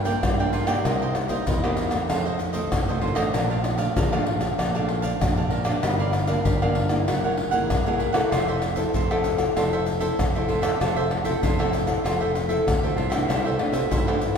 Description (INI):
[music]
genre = samba and choro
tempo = 96 BPM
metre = 4/4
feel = straight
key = F major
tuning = A4 = 441 Hz
[part]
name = nylon-string guitar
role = accompaniment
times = 0.0-14.4 s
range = F2 to A4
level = -27 LUFS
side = left 2 dB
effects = none
[part]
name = sustaining fretless electric bass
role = bass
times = 0.0-14.4 s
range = F1 to C3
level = -28 LUFS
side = right 1 dB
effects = none
[part]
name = cavaquinho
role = accompaniment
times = 0.1-14.4 s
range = Eb4 to A5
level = -28 LUFS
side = right 4 dB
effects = none
[part]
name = egg shaker, surdo, pandeiro and tamborim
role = percussion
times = 0.1-14.4 s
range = none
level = -24 LUFS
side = left 1 dB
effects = none
[sound]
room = wet concert hall reverb, RT60 2.2 s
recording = recorded in a church or concert hall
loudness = -21 LUFS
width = side -6 dB against mid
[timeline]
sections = 0.0-13.3 A section; 13.3-14.4 B section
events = none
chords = 0.0 Gm7; 0.9 Cm7; 2.1 F7; 3.3 Bbmaj7; 5.8 Gm7; 7.1 Gb9; 8.3 Fmaj7; 13.3 C69